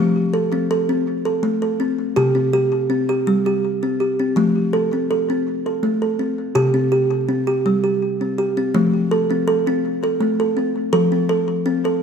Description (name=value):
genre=world meditative, meditative tuned percussion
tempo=82 BPM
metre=3/4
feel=straight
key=F major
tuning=A4 = 440 Hz
part: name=kalimba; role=solo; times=0.0-12.0 s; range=C3 to A4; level=-17 LUFS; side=equal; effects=ping-pong delay
room=wet echo chamber reverb, RT60 1.7 s, studio reverb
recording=none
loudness=-17 LUFS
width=side -6 dB against mid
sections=0.0-12.0 A section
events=none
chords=0.0 F; 2.2 C5; 4.4 F; 6.6 C5; 8.7 F